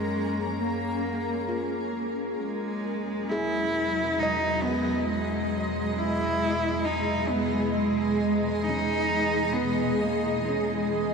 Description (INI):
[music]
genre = ambient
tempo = 66 BPM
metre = 3/4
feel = straight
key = unclear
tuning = A4 = 442 Hz
[part]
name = warm cello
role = melody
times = 0.0-11.1 s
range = G#3 to E4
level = -28 LUFS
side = equal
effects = diffuse ambient delay
[part]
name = granular cloud pad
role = sustained chords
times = 0.0-11.1 s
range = B2 to A#5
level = -28 LUFS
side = equal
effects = built-in reverb
[part]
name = handpan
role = arpeggios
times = 0.0-11.1 s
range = G#3 to F#5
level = -37 LUFS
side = equal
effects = diffuse ambient delay
[part]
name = round analog bass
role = bass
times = 0.0-11.1 s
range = E2 to F#2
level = -39 LUFS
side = equal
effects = none
[sound]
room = wet huge ambient reverb, RT60 7.2 s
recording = none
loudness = -24 LUFS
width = side -5 dB against mid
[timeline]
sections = 0.0-11.1 A section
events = fade-out on analog synth bass 0.0-11.1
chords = 0.0 F#maj7; 2.4 Emaj7